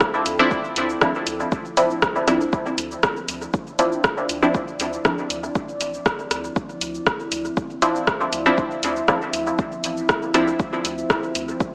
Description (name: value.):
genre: dub techno.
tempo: 119 BPM.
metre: 4/4.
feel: straight.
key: D minor.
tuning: A4 = 439 Hz.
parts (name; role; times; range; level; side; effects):
deep dark ambient pad; sustained chords; 0.0-11.7 s; F3 to E5; -32 LUFS; equal; chorus, built-in reverb, sidechain pumping.
filtered dub chord stab; stabs; 0.0-10.5 s; F3 to E4; -24 LUFS; equal; chorus, phaser, sidechain pumping, dub echo.
deep house drum kit; drums; 0.0-11.7 s; hi-hat, rim click, shaker; -25 LUFS; equal; overdrive, dub echo.
electronic kick drum; drums; 0.0-11.7 s; none; -29 LUFS; equal; overdrive.
soft dub sub bass; bass; 0.3-11.5 s; D1 to D2; -44 LUFS; equal; sidechain pumping.
room: moderate echo chamber reverb, RT60 1.6 s.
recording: small speaker sound.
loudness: -22 LUFS.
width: mono.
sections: 0.0-2.5 A section; 2.5-11.7 A section.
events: filter sweep on synth stab 0.0-2.5, 2.5-11.7.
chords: 0.0 Dm9.